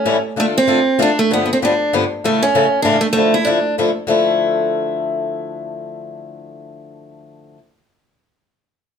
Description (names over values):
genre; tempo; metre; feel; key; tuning
jazz; 193 BPM; 3/4; swing 60% on 8ths; D minor; A4 = 442 Hz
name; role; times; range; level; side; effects
picked steel-string acoustic guitar; melody; 0.0-3.7 s; A3 to E4; -16 LUFS; right 2 dB; none
picked swing-style acoustic guitar; accompaniment; 0.1-7.6 s; G2 to A4; -18 LUFS; left 4 dB; none
room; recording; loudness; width
wet studio reverb, RT60 0.6 s; heard from further back in the room; -14 LUFS; side -7 dB against mid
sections
0.0-4.1 A section; 4.1-6.0 B section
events
none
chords
0.4 Dm; 1.3 G7; 2.2 A; 3.2 Dmadd9